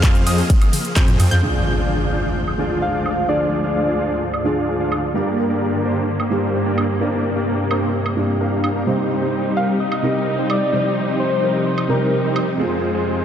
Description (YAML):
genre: EDM, festival progressive house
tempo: 129 BPM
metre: 4/4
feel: straight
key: unclear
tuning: A4 = 443 Hz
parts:
  - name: clear studio string section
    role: sustained chords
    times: 0.0-13.2 s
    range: D2 to Ab4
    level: -24 LUFS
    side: left 1 dB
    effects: sidechain pumping, low-pass filter
  - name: wide unison pluck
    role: arpeggios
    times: 0.0-1.4 s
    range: Eb6 to G6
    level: -29 LUFS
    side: equal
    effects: cassette tape, sidechain pumping, tape echo
  - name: supersaw chords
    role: riff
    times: 0.0-13.2 s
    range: G3 to G5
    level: -22 LUFS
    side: equal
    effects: vintage 12-bit sampler grit, sidechain pumping, low-pass filter, tape echo
  - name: detuned saw bass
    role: bass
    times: 0.0-1.4 s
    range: F2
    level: -18 LUFS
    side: equal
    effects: sidechain pumping
  - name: big-room dance drum kit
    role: drums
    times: 0.0-12.5 s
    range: handclaps, hi-hat, ride cymbal, shaker, toms, woodblock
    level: -26 LUFS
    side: right 1 dB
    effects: overdrive, low-pass filter on hats, small room reverb, low-pass filter on perc, low-pass filter on cymbals, low-pass filter on snare, low-pass filter on toms
  - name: electronic kick drum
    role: drums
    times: 0.0-1.1 s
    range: none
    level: -14 LUFS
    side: equal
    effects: overdrive, small room reverb
  - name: felt-muted upright piano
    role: accompaniment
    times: 1.4-13.2 s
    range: G2 to D5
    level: -25 LUFS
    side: right 3 dB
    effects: sidechain pumping, tape echo
  - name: impact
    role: sound effects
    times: 1.4-3.3 s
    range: none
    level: -25 LUFS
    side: equal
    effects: none
  - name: soft struck synth lead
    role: melody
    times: 2.8-4.9, 9.6-12.3 s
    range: Bb4 to F5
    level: -24 LUFS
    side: left 1 dB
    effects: chorus, tape echo
room: wet huge ambient reverb, RT60 7.2 s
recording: dreamy mix soaked in reverb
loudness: -17 LUFS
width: side -9 dB against mid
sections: 0.0-1.4 A section; 1.4-13.2 B section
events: drop 0.0-1.4; drum fill 0.7-1.4; impact 1.4-3.3; filter sweep on string section 1.4-13.2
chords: 0.0 Fm; 1.4 Ddim; 5.2 Gm; 8.9 Cm; 12.6 Fm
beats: 0.04 0.50 0.96 | 1.43 1.90 2.36 2.83 | 3.29 3.76 4.22 4.69 | 5.15 5.62 6.08 6.55 | 7.01 7.48 7.94 8.41 | 8.87 9.34 9.80 10.27 | 10.73 11.20 11.66 12.13 | 12.59 13.06